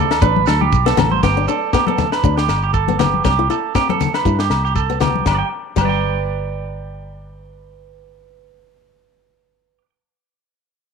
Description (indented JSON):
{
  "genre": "highlife guitar band",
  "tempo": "119 BPM",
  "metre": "4/4",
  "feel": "swing 55% on 16ths",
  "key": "G major",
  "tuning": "A4 = 443 Hz",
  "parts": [
    { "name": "fingerpicked old ladder-braced acoustic guitar", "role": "accompaniment", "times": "0.0-5.9 s", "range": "G3 to E4", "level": "-22 LUFS", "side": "left 12 dB", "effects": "none" },
    { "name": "clean electric guitar", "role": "arpeggios", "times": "0.0-9.9 s", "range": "G4 to G5", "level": "-20 LUFS", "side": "right 11 dB", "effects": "slapback echo" },
    { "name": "fingered electric bass", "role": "bass", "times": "0.0-9.8 s", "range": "G1 to G2", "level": "-20 LUFS", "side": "equal", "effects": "none" },
    { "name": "tight funk drum kit", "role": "drums", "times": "0.1-5.9 s", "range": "crash cymbal, kick drum, snare drum", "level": "-22 LUFS", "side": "left 3 dB", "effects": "none" },
    { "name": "agogo bells", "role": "percussion", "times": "0.1-5.9 s", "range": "none", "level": "-26 LUFS", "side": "left 10 dB", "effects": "none" },
    { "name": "shekere", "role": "percussion", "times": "0.2-5.9 s", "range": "none", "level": "-26 LUFS", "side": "right 5 dB", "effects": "none" },
    { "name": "congas", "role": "percussion", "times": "0.4-5.9 s", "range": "none", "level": "-22 LUFS", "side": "left 8 dB", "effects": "none" }
  ],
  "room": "moderate spring reverb, RT60 2.4 s",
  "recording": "1960s-style stereo with parts hard left and right",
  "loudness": "-14 LUFS",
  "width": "side -6 dB against mid",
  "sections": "0.0-1.2 A section; 1.2-5.3 B section; 5.3-9.3 C section",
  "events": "none",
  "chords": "0.0 D5; 1.2 G; 3.2 Cmaj7; 5.3 G"
}